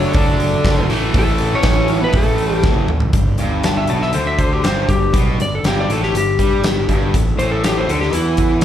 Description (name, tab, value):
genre	classic rock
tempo	120 BPM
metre	4/4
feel	straight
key	unclear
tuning	A4 = 440 Hz
part	electric slide guitar	melody	0.0-8.6 s	E4 to A5	-21 LUFS	left 2 dB	slapback echo, plate reverb
part	octave-fuzz lead guitar	second line	0.0-2.6 s	A3 to D4	-24 LUFS	right 2 dB	distortion, plate reverb, slapback echo
part	picked steel-string acoustic guitar	accompaniment	0.0-8.6 s	A2 to D5	-31 LUFS	left 2 dB	none
part	crunchy overdriven guitar	riff	0.0-2.9 s	A2 to D4	-25 LUFS	right 2 dB	none
part	overdriven electric guitar	riff	0.0-8.6 s	G2 to D4	-21 LUFS	equal	slapback echo
part	fuzz fingered electric bass	bass	0.0-8.6 s	F#1 to G2	-20 LUFS	equal	overdrive
part	huge arena drum kit	drums	0.1-8.6 s	hi-hat, kick drum, snare drum, toms	-18 LUFS	equal	none
room	light reverb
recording	live gig heard through the venue's PA, club ambience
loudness	-14 LUFS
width	side -10 dB against mid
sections	0.0-3.1 A section; 3.1-8.6 B section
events	drum fill 2.7-3.1; electric slide guitar solo 3.1-8.6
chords	0.0 D/F#; 0.9 A; 3.1 G5; 7.1 A